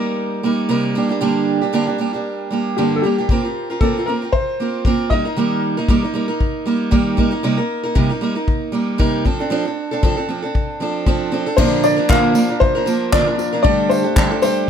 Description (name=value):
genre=acoustic pop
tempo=116 BPM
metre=4/4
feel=swing 55% on 16ths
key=Bb major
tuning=A4 = 445 Hz
part: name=picked steel-string acoustic guitar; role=accompaniment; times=0.0-14.7 s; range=G2 to Bb4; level=-18 LUFS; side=right 3 dB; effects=none
part: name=clear upright piano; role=melody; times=2.8-5.6, 11.6-14.7 s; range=G4 to F5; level=-19 LUFS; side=left 3 dB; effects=none
part: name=unplugged drum kit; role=drums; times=3.3-14.6 s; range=crash cymbal, handclaps, kick drum, tambourine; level=-18 LUFS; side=left 2 dB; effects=none
part: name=felt-muted upright piano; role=accompaniment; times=11.6-14.7 s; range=A3 to D5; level=-25 LUFS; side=left 8 dB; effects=none
room=little or no reverb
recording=close, detailed microphones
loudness=-15 LUFS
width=side -8 dB against mid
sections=0.0-11.6 A section; 11.6-14.7 B section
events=none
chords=0.0 Cm7; 1.0 Gm; 3.3 Bbsus2; 5.1 Eb; 7.2 Cm7; 9.3 F6; 11.6 Bb; 13.6 Dsus4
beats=0.17 0.69 | 1.21 1.73 2.25 2.77 | 3.29 3.81 4.33 4.85 | 5.37 5.89 6.41 6.93 | 7.44 7.96 8.48 9.00 | 9.52 10.03 10.55 11.07 | 11.58 12.10 12.62 13.13 | 13.65 14.17 14.68